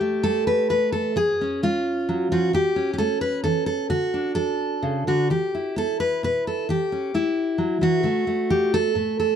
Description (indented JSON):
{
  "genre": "folk, solo fingerstyle acoustic guitar",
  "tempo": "131 BPM",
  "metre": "3/4",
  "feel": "rubato",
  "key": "E dorian",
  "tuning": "A4 = 438 Hz",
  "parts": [
    { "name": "fingerpicked steel-string acoustic guitar", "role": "solo", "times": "0.0-9.4 s", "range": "A2 to B4", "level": "-20 LUFS", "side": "equal", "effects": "none" }
  ],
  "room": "light reverb",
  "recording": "dark, warm production",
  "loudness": "-20 LUFS",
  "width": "side -8 dB against mid",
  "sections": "0.0-9.4 A section",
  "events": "none",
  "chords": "0.0 Em; 1.2 C#/E#; 2.5 A/E; 3.9 D; 5.3 Em; 6.7 A/E; 8.0 D"
}